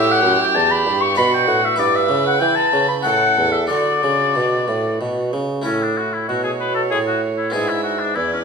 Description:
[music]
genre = classical, baroque-style sonata movement with continuo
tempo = 95 BPM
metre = 3/4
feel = rubato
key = D major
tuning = A4 = 442 Hz
[part]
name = warm oboe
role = melody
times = 0.0-8.4 s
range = C#4 to C#6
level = -18 LUFS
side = left 4 dB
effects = none
[part]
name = rich violin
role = second line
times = 0.0-8.4 s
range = F#4 to E5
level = -23 LUFS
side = right 7 dB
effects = none
[part]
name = harpsichord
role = accompaniment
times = 0.0-8.4 s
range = E2 to C#5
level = -24 LUFS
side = right 1 dB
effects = none
[part]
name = mellow bassoon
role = bass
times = 0.0-8.4 s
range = E2 to E3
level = -22 LUFS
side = right 2 dB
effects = none
[sound]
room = moderate recital hall reverb, RT60 1.6 s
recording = minimal, uncompressed stereo recording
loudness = -15 LUFS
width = side -5 dB against mid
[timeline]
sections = 0.0-5.7 A section; 5.7-8.4 A section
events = none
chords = 0.0 A7; 1.2 Bm; 1.8 Em/G; 3.0 A; 3.7 D; 5.7 A; 7.5 E7/G#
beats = 0.54 1.16 | 1.78 2.40 3.04 | 3.70 4.35 5.00 | 5.65 6.29 6.92 | 7.55 8.17

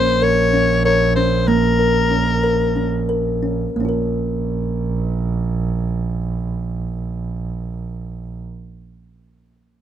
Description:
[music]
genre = contemporary instrumental, chamber music in an uneven meter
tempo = 174-194 BPM (eighths)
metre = 7/8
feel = straight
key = Bb minor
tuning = A4 = 440 Hz
[part]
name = raspy soprano saxophone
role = melody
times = 0.0-3.1 s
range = Bb4 to Db5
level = -18 LUFS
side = left 4 dB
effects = none
[part]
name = kalimba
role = arpeggios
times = 0.0-8.5 s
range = Bb3 to Bb4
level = -20 LUFS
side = equal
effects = none
[part]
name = clear double bass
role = bass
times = 0.0-8.4 s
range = Bb1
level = -21 LUFS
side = right 3 dB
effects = none
[sound]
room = light reverb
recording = close, detailed microphones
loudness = -17 LUFS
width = side -10 dB against mid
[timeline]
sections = 0.0-3.8 A section; 3.8-8.5 B section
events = slowing down 0.0-3.8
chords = 0.0 Bbm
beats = 0.22 0.53 0.84 1.15 | 1.47 1.78 2.10 2.43 2.75 3.08 3.42 | 3.75 4.09 4.43 4.76 5.10 5.43 5.77 | 6.10 6.43 6.77 7.11 7.45 7.79 8.13

